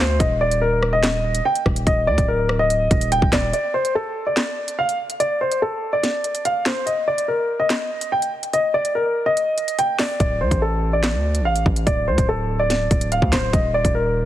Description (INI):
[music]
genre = hip hop, drill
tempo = 144 BPM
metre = 4/4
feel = half-time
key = unclear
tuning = A4 = 442 Hz
[part]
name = dark baby grand piano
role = melody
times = 0.0-14.2 s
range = A4 to G5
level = -20 LUFS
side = equal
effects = ping-pong delay
[part]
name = distorted 808-style bass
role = bass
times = 0.0-3.5, 10.2-14.3 s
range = D1 to Eb2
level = -22 LUFS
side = equal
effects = distortion
[part]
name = drill drum kit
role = drums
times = 0.2-13.9 s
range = handclaps, hi-hat, kick drum, rim click, snare drum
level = -21 LUFS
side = equal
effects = overdrive
[sound]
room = light reverb, digital ambience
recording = heavily compressed radio sound, multiband compression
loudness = -18 LUFS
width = side -13 dB against mid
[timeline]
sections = 0.0-3.5 A section; 3.5-14.3 B section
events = break 3.5-10.2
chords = 0.2 Ebmaj7(no3); 3.5 N.C.; 10.2 D5; 13.5 Ebmaj7(no3)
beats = | 0.20 0.62 1.03 1.45 | 1.87 2.28 2.70 3.12 | 3.53 3.95 4.37 4.78 | 5.20 5.62 6.03 6.45 | 6.87 7.28 7.70 8.12 | 8.53 8.95 9.37 9.78 | 10.20 10.62 11.03 11.45 | 11.87 12.28 12.70 13.12 | 13.53 13.95